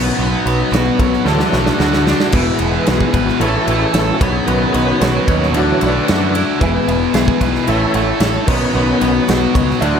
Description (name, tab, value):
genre	classic rock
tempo	112 BPM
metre	4/4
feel	straight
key	unclear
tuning	A4 = 441 Hz
part	bright upright piano	accompaniment	0.0-10.0 s	B3 to F#5	-26 LUFS	right 6 dB	none
part	picked steel-string acoustic guitar	accompaniment	0.0-10.0 s	E2 to D5	-26 LUFS	right 1 dB	none
part	bright tonewheel organ	sustained chords	0.0-10.0 s	D#3 to F#5	-20 LUFS	right 1 dB	overdrive, chorus vibrato, fast rotary speaker
part	cranked stack guitar	riff	0.0-10.0 s	E2 to D4	-19 LUFS	left 11 dB	overdrive
part	tight distorted guitar	riff	0.0-10.0 s	D3 to C#5	-21 LUFS	right 11 dB	distortion
part	growling picked electric bass	bass	0.0-10.0 s	E1 to F#2	-20 LUFS	equal	overdrive
part	big rock drum kit	drums	0.5-9.9 s	crash cymbal, kick drum, ride cymbal, snare drum	-20 LUFS	right 1 dB	none
room	moderate echo chamber reverb, RT60 1.8 s, small room ambience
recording	none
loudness	-12 LUFS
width	side -7 dB against mid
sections	0.0-10.0 A section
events	tonewheel organ solo 0.0-10.0; drum fill 1.3-2.3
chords	0.0 Badd9; 1.3 Dadd9; 2.3 E; 3.4 A; 4.2 Badd9; 5.5 Dadd9; 6.6 E; 7.7 A; 8.5 Badd9